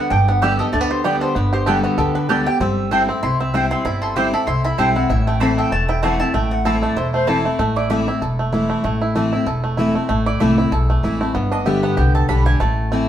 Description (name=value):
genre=bluegrass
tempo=192 BPM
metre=4/4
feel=swing 55% on 8ths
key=A minor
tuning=A4 = 440 Hz
part: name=mandolin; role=melody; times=0.0-7.1 s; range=F#4 to D6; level=-24 LUFS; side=equal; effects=none
part: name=picked steel-string acoustic guitar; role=accompaniment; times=0.0-13.1 s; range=E2 to G4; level=-20 LUFS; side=left 1 dB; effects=none
part: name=bluegrass banjo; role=arpeggios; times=0.0-13.1 s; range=A3 to A4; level=-23 LUFS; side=right 2 dB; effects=none
part: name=upright bass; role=bass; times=0.1-13.1 s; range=E1 to D2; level=-21 LUFS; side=equal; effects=none
part: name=mandolin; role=stabs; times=0.4-8.1, 10.3-13.1 s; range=B3 to B5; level=-22 LUFS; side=right 2 dB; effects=none
part: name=warm fiddle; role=second line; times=7.1-7.6 s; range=A4 to C5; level=-23 LUFS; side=left 2 dB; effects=none
room=moderate studio reverb, RT60 0.7 s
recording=band playing live in one room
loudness=-16 LUFS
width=side -10 dB against mid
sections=0.0-7.6 A section; 7.6-13.1 B section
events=mandolin solo 7.6-13.1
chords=0.0 G; 2.6 C/G; 5.1 Am; 11.3 G